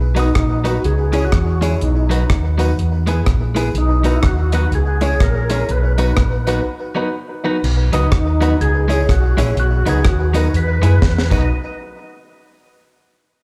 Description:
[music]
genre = ska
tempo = 124 BPM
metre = 4/4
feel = swing 60% on 8ths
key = B major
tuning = A4 = 440 Hz
[part]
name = fingered electric bass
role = bass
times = 0.0-11.5 s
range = A#1 to F#2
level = -18 LUFS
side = equal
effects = none
[part]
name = clean electric guitar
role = accompaniment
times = 0.1-11.4 s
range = F#3 to G#4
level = -28 LUFS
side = equal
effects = none
[part]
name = percussive tonewheel organ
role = melody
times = 0.2-11.5 s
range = D#4 to D#5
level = -25 LUFS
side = equal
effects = overdrive, chorus vibrato, slow rotary speaker, tape echo, slapback echo
[part]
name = dark upright piano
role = stabs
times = 0.2-11.5 s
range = D#4 to C#5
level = -26 LUFS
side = equal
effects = tape echo, slapback echo
[part]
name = deep reggae drum kit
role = drums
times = 0.2-11.4 s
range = crash cymbal, hi-hat, kick drum, rim click, snare drum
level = -20 LUFS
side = equal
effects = none
[part]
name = tambourine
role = percussion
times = 0.2-11.5 s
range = none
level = -44 LUFS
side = equal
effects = tape echo
[sound]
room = light reverb, studio reverb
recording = live gig heard through the venue's PA, club reverb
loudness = -16 LUFS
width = mono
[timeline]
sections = 0.0-7.6 A section; 7.6-11.5 B section; 11.5-13.4 C section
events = break 6.7-7.6; drum fill 11.0-11.5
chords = 0.0 B; 0.8 C#m; 1.8 B; 2.8 E; 3.8 B; 4.7 C#m; 5.7 B; 8.6 C#m; 9.6 B; 10.5 E; 11.3 B; 11.5 N.C.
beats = 0.36 0.84 1.33 | 1.81 2.30 2.78 3.27 | 3.75 4.24 4.72 5.21 | 5.70 6.18 6.67 7.15 | 7.63 8.12 8.60 9.09 | 9.57 10.05 10.54 11.02

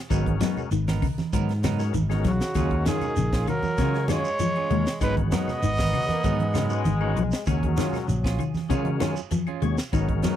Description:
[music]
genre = afrobeat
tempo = 98 BPM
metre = 4/4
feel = straight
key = Eb minor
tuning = A4 = 440 Hz
[part]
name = percussive tonewheel organ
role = accompaniment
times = 0.1-10.4 s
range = Ab3 to Db5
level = -32 LUFS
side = left 11 dB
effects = overdrive, chorus vibrato
[part]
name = semi-hollow electric guitar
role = arpeggios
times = 0.1-10.4 s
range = Db3 to Ab3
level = -29 LUFS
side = left 9 dB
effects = analog chorus
[part]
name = semi-hollow electric guitar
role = stabs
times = 0.1-10.4 s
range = Gb3 to Bb4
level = -34 LUFS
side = right 12 dB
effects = spring reverb
[part]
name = fingered electric bass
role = bass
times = 0.1-10.2 s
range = Ab1 to Db3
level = -26 LUFS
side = equal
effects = none
[part]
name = tight funk drum kit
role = drums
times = 0.1-10.4 s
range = hi-hat, kick drum, snare drum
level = -30 LUFS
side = equal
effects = none
[part]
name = claves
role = percussion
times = 0.1-10.1 s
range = none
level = -43 LUFS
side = left 19 dB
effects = none
[part]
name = shekere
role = percussion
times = 0.1-10.4 s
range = none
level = -34 LUFS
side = right 2 dB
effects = none
[part]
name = congas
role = percussion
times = 0.3-10.4 s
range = none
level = -31 LUFS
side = right 4 dB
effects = none
[part]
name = breathy trumpet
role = melody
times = 2.3-7.1 s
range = Gb4 to Eb5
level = -28 LUFS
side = right 1 dB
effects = none
[part]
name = growling tenor saxophone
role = second line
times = 2.3-7.1 s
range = Db3 to Cb4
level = -34 LUFS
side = right 3 dB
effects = none
[part]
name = mellow trombone section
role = second line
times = 5.9-8.7 s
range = Gb3 to Bb3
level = -33 LUFS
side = left 5 dB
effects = none
[sound]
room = little or no reverb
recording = dry, close 1970s-style studio recording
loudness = -22 LUFS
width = side -11 dB against mid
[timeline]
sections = 0.0-10.4 A section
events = none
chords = 0.1 Abm9; 2.6 Ebm11; 5.0 Abm9; 7.5 Ebm11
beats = | 0.10 0.71 1.33 1.94 | 2.56 3.17 3.78 4.40 | 5.01 5.63 6.24 6.86 | 7.47 8.09 8.70 9.32 | 9.93

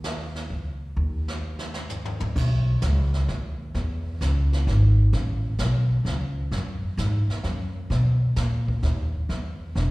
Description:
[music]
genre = jazz, small-group swing and bop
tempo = 130 BPM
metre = 3/4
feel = swing 68% on 8ths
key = unclear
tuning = A4 = 440 Hz
[part]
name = upright bass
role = bass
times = 0.0-9.9 s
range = E1 to B2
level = -22 LUFS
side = equal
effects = none
[part]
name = jazz brush drum kit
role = drums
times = 0.0-9.9 s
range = brushed snare drum, crash cymbal, hi-hat, kick drum, snare drum, toms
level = -33 LUFS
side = equal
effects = slapback echo
[sound]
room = little or no reverb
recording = live gig heard through the venue's PA, recital hall reverb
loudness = -22 LUFS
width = side -22 dB against mid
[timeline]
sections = 0.0-2.4 A section; 2.4-9.9 B section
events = drum fill 1.4-2.4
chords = none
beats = 0.05 0.51 | 0.97 1.44 1.90 | 2.36 2.83 3.29 | 3.75 4.21 4.68 | 5.14 5.60 6.06 | 6.53 6.99 7.45 | 7.91 8.37 8.84 | 9.30 9.76

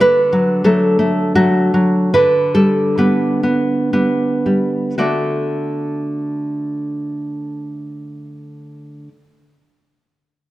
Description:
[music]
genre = romantic piece for solo classical guitar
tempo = 55-95 BPM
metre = 3/4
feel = rubato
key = D major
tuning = A4 = 440 Hz
[part]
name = nylon-string guitar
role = solo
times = 0.0-9.1 s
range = D3 to D5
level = -15 LUFS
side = equal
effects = none
[sound]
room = moderate recital hall reverb, RT60 1.8 s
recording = none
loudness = -14 LUFS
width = side -16 dB against mid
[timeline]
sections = 0.0-5.0 A section; 5.0-10.5 B section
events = slowing down 0.0-5.0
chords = 0.0 D; 2.1 G/D; 5.0 D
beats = | 0.00 0.64 1.33 | 2.12 2.98 3.92 | 4.97 6.00 7.01 | 8.03 9.06

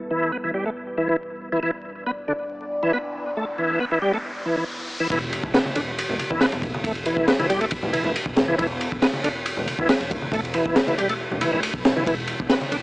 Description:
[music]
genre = breakbeat, breaks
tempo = 138 BPM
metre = 4/4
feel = straight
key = unclear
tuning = A4 = 440 Hz
[part]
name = dark analog pad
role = sustained chords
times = 0.0-5.1 s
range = G3 to D5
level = -32 LUFS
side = equal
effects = chorus, vintage 12-bit sampler grit, sidechain pumping
[part]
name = bright tonewheel organ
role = riff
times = 0.1-12.8 s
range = D3 to B3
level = -24 LUFS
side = equal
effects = chorus vibrato, slow rotary speaker, tape echo
[part]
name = riser and impact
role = sound effects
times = 2.4-6.8 s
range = none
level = -35 LUFS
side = equal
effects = none
[part]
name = upright bass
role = bass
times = 5.1-12.8 s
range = E1 to D2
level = -33 LUFS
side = equal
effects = none
[part]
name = crunchy breakbeat drum kit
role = drums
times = 5.1-12.8 s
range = kick drum, ride cymbal, snare drum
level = -23 LUFS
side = equal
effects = none
[part]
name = congas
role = percussion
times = 5.7-12.7 s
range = none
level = -31 LUFS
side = equal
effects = none
[sound]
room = light reverb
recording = dry, gritty hardware recording, vinyl crackle, low-pass filter, small speaker sound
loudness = -21 LUFS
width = side -22 dB against mid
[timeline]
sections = 0.0-5.1 A section; 5.1-12.8 B section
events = filter sweep 0.0-5.1; riser 2.4-5.1; drop 5.1-12.8; impact 5.1-6.8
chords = 0.0 Em; 5.1 E5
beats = 0.33 0.76 1.19 | 1.63 2.06 2.50 2.93 | 3.37 3.80 4.24 4.67 | 5.11 5.54 5.98 6.41 | 6.85 7.28 7.72 8.15 | 8.59 9.02 9.46 9.89 | 10.32 10.76 11.19 11.63 | 12.06 12.50

